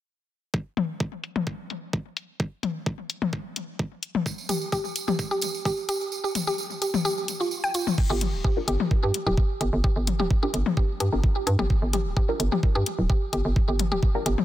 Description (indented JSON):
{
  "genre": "minimal techno",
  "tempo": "129 BPM",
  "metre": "4/4",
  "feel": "straight",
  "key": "G minor",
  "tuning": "A4 = 440 Hz",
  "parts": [
    { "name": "electronic kick drum", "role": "drums", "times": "0.5-14.1 s", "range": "none", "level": "-24 LUFS", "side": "equal", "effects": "high-pass filter on kick" },
    { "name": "punchy analog drum machine", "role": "drums", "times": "0.8-14.4 s", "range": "crash cymbal, hi-hat", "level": "-31 LUFS", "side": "left 4 dB", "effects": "low-pass filter on hats, low-pass filter on cymbals" },
    { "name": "electronic toms", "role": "percussion", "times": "0.8-14.4 s", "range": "none", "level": "-29 LUFS", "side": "left 6 dB", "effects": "digital delay" },
    { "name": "tambourine", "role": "percussion", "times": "4.3-8.0 s", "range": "none", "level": "-33 LUFS", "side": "right 6 dB", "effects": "none" },
    { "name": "mallet-like synth pluck", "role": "riff", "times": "4.5-14.3 s", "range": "F4 to G5", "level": "-29 LUFS", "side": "right 1 dB", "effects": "chorus, sidechain pumping, digital delay" },
    { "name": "hollow knocking FM bass", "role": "bass", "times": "8.1-14.4 s", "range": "D1 to G2", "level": "-24 LUFS", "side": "equal", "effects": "sidechain pumping" },
    { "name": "filtered dub chord stab", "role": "stabs", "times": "8.6-14.2 s", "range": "D4 to Bb4", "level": "-32 LUFS", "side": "equal", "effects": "phaser, digital delay" }
  ],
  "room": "light reverb",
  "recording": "dense, heavily limited modern master",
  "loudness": "-23 LUFS",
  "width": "side -13 dB against mid",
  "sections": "0.5-8.0 A section; 8.0-14.4 B section",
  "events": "kick drops out 6.1-8.0",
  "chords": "0.5 N.C.; 8.0 G5",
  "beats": "| 0.54 1.00 1.47 1.93 | 2.40 2.86 3.33 3.79 | 4.26 4.72 5.19 5.65 | 6.12 6.58 7.05 7.51 | 7.98 8.45 8.91 9.38 | 9.84 10.30 10.77 11.24 | 11.70 12.17 12.63 13.10 | 13.56 14.03"
}